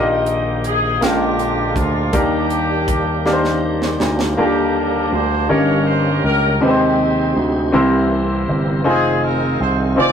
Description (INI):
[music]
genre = slow gospel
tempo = 54 BPM (dotted quarters)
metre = 6/8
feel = straight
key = Eb major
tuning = A4 = 442 Hz
[part]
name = warm horn section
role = melody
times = 0.0-10.1 s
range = Bb3 to D5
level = -20 LUFS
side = equal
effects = none
[part]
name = clear baby grand piano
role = accompaniment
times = 0.0-10.1 s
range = G2 to Eb5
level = -18 LUFS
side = left 1 dB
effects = none
[part]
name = tonewheel organ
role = sustained chords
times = 0.0-10.1 s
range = D3 to G5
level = -26 LUFS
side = right 3 dB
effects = slow rotary speaker, overdrive, chorus vibrato
[part]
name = slap bass with an envelope filter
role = bass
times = 0.0-10.1 s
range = F1 to Eb2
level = -20 LUFS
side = right 1 dB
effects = none
[part]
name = tight funk drum kit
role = drums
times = 0.3-4.4 s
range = hi-hat, kick drum, snare drum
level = -22 LUFS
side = right 1 dB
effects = none
[sound]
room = light reverb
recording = rough rehearsal-room recording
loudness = -14 LUFS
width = side -8 dB against mid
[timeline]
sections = 0.0-4.4 A section; 4.4-10.1 B section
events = drum fill 3.3-4.4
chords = 0.0 Eb/Bb; 1.0 Bb7; 2.1 Ebmaj7; 5.5 Eb7/G; 6.6 Abmaj7/Eb; 7.7 C7; 8.9 Fm7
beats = 1.01 | 2.13 3.25 | 4.37 5.49 | 6.61 7.73 | 8.85 9.97